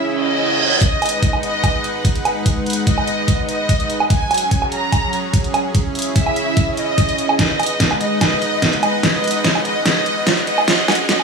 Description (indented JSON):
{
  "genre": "heavy wobble dubstep",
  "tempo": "146 BPM",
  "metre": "4/4",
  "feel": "half-time",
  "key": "G# minor",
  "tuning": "A4 = 440 Hz",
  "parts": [
    { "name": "warm symphonic violin section", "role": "melody", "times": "0.0-11.2 s", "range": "D#5 to A#5", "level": "-21 LUFS", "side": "equal", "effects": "tape echo" },
    { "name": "supersaw pad", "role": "sustained chords", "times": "0.0-11.2 s", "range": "C#3 to F#5", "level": "-23 LUFS", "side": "right 1 dB", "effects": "sidechain pumping" },
    { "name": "reverse cymbal and riser", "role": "sound effects", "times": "0.2-0.8, 9.3-11.2 s", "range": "none", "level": "-23 LUFS", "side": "right 3 dB", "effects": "none" },
    { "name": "dubstep drum kit", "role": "drums", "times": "0.8-11.2 s", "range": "hi-hat, snare drum, woodblock", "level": "-18 LUFS", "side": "right 2 dB", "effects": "overdrive" },
    { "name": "electronic kick drum", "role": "drums", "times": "0.8-11.2 s", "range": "none", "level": "-18 LUFS", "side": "equal", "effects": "none" }
  ],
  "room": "moderate lush hall reverb, RT60 1.7 s",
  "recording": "high-pass filter, studio ambience",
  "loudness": "-15 LUFS",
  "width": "side -5 dB against mid",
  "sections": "0.8-11.2 A section",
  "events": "reverse cymbal 0.2-0.8; build-up 0.8-11.2; drum fill 7.4-11.2; riser 9.3-11.2",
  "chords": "0.0 C#m; 0.8 G#m7; 4.1 F#sus2; 5.7 C#m; 7.4 G#m7; 10.7 F#sus2"
}